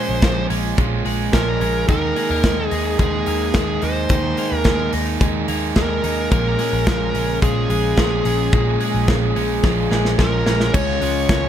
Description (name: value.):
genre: jangly indie pop.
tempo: 108 BPM.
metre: 4/4.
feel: straight.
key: unclear.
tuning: A4 = 440 Hz.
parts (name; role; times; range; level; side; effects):
bluesy overdriven lead guitar; melody; 0.0-11.5 s; Ab4 to Db5; -23 LUFS; left 1 dB; distortion.
crunchy overdriven guitar; accompaniment; 0.0-11.5 s; Bb2 to Ab4; -24 LUFS; right 8 dB; none.
twelve-string electric guitar; arpeggios; 0.0-11.5 s; Bb2 to Eb4; -25 LUFS; left 4 dB; none.
vintage muted picked electric bass; bass; 0.1-11.5 s; Bb1 to Eb2; -24 LUFS; equal; none.
modern studio drum kit; drums; 0.2-11.4 s; crash cymbal, hi-hat, kick drum, ride cymbal, snare drum; -21 LUFS; equal; none.
room: light reverb.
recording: none.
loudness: -16 LUFS.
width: side -10 dB against mid.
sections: 0.0-10.7 A section.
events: drum fill 9.6-10.7.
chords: 0.0 Bbm7; 1.9 Ebsus4; 6.3 Bbm7; 10.7 Db.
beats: 0.22 0.78 1.33 | 1.89 2.44 3.00 3.55 | 4.10 4.66 5.21 5.76 | 6.32 6.87 7.43 7.98 | 8.53 9.09 9.64 10.19 | 10.74 11.30.